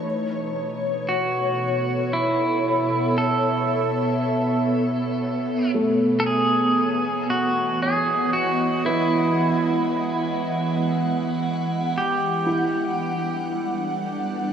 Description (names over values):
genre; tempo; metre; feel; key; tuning
ambient; 58 BPM; 3/4; straight; B mixolydian; A4 = 441 Hz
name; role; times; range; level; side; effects
ethereal airy pad; sustained chords; 0.0-14.5 s; B2 to F#5; -23 LUFS; right 1 dB; ensemble chorus, built-in reverb, shimmer reverb
felt-muted upright piano; arpeggios; 0.0-14.5 s; A3 to A5; -30 LUFS; equal; shimmer reverb, diffuse ambient delay
pedal steel guitar; melody; 1.1-13.5 s; E4 to A4; -24 LUFS; right 1 dB; shimmer reverb, diffuse ambient delay
room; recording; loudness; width
wet huge ambient reverb, RT60 7.6 s; none; -20 LUFS; side -8 dB against mid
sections
0.0-14.5 A section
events
none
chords
0.0 B7sus4; 6.3 Emaj9; 12.5 Gmaj9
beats
| 0.05 1.08 2.12 | 3.15 4.19 5.22 | 6.26 7.29 8.32 | 9.36 10.39 11.43 | 12.46 13.50